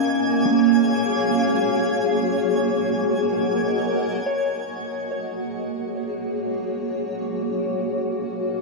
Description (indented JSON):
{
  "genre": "ambient",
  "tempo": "free time",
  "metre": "none",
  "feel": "none",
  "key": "unclear",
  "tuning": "A4 = 440 Hz",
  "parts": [
    { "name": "granular cloud pad", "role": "sustained chords", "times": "0.0-8.6 s", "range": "A#3 to F#5", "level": "-22 LUFS", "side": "right 1 dB", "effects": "built-in reverb, shimmer reverb" },
    { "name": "soft synth bell", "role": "arpeggios", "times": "0.0-6.9 s", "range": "A#3 to G#5", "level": "-26 LUFS", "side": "left 1 dB", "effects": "chorus, analog delay, shimmer reverb" },
    { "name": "twinkling granular texture", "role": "texture", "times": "0.0-4.3 s", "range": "G#5", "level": "-30 LUFS", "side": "equal", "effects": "built-in reverb, shimmer reverb" }
  ],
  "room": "wet spring reverb, RT60 2.6 s",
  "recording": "echo-heavy mix",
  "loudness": "-20 LUFS",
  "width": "side +0 dB against mid",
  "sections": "0.0-4.2 A section; 4.2-8.6 B section",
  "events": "none",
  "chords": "0.0 F#maj13/A#; 1.7 D#madd11/A#"
}